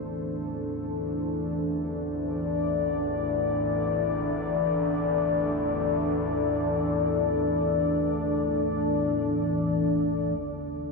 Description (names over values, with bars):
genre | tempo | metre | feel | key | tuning
dark ambient drone | free time | none | none | unclear | A4 = 439 Hz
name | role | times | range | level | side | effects
dark analog pad | sustained chords | 0.0-10.9 s | D4 to D5 | -26 LUFS | left 2 dB | chorus
analog drone | drone | 0.0-10.9 s | A1 to E2 | -30 LUFS | left 1 dB | chorus
bronze singing bowl | texture | 0.0-10.4 s | none | barely audible | none | none
room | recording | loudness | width
wet huge ambient reverb, RT60 7.4 s | studio ambience | -24 LUFS | side -2 dB against mid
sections
0.0-10.4 A section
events
fade-in on synth drone 0.0-10.4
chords
0.0 Am; 10.4 A5